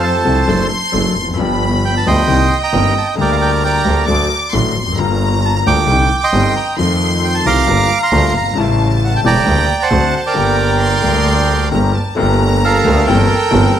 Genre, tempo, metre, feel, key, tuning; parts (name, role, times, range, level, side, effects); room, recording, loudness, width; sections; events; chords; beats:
tango; 134 BPM; 4/4; rubato; G minor; A4 = 440 Hz
bandoneon; melody; 0.0-13.8 s; A4 to D6; -16 LUFS; right 5 dB; analog delay
rich studio violin section; second line; 0.0-13.8 s; G5 to D6; -20 LUFS; left 3 dB
warm concert grand piano; accompaniment; 0.0-13.7 s; E1 to A4; -17 LUFS; left 4 dB
clear double bass; bass; 0.0-13.7 s; E1 to F2; -17 LUFS; right 1 dB
light reverb; close, detailed microphones; -12 LUFS; side -9 dB against mid
0.0-12.2 A section; 12.2-13.8 B section
0.5 D/F#; 1.4 G7; 2.3 Cm7; 3.2 Gm/D; 4.1 D; 5.0 Gm7; 5.9 Cmadd9; 6.8 F7; 7.7 Gm7; 8.6 A7; 9.5 Gm/D; 9.9 D7; 10.4 Gm; 12.2 Gmadd9; 13.1 C7/G
0.04 0.49 0.94 | 1.39 1.83 2.28 2.73 | 3.18 3.63 4.08 4.53 | 4.99 5.44 5.89 6.34 | 6.79 7.24 7.68 8.13 | 8.58 9.03 9.47 9.92 | 10.37 10.82 11.27 11.72 | 12.18 12.63 13.08 13.53